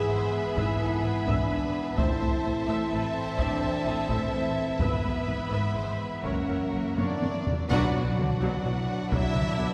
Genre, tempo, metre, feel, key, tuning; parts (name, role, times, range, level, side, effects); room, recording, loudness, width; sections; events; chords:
cinematic, epic orchestral film score; 85 BPM (dotted quarters); 12/8; straight; A harmonic minor; A4 = 440 Hz
rich symphonic violin section; melody; 0.0-9.7 s; G#4 to F#5; -41 LUFS; equal
warm symphonic violin section; second line; 0.0-9.7 s; D4 to B5; -38 LUFS; equal
rich symphonic viola section; accompaniment; 0.0-9.7 s; D3 to E5; -40 LUFS; equal
clear trombone section; sustained chords; 0.0-9.7 s; E3 to D4; -37 LUFS; equal
dark French horn section; sustained chords; 0.0-9.7 s; G#3 to G#4; -35 LUFS; equal
rich symphonic string section; sustained chords; 0.0-9.7 s; A#3 to E5; -39 LUFS; equal
rich studio double bass section; bass; 0.1-9.7 s; F#1 to B1; -36 LUFS; equal
warm symphonic cello section; bass; 0.1-9.7 s; F#2 to B2; -36 LUFS; equal
taiko ensemble; drums; 0.6-9.6 s; -34 LUFS; equal
wet concert hall reverb, RT60 2.0 s; heard from further back in the room; -28 LUFS; mono
0.0-7.7 A section; 7.7-9.7 B section
drum fill 7.0-7.7; band accent 7.7-8.2
0.0 E/G#; 2.0 Am; 4.8 E/G#; 6.2 F#7; 7.7 Bm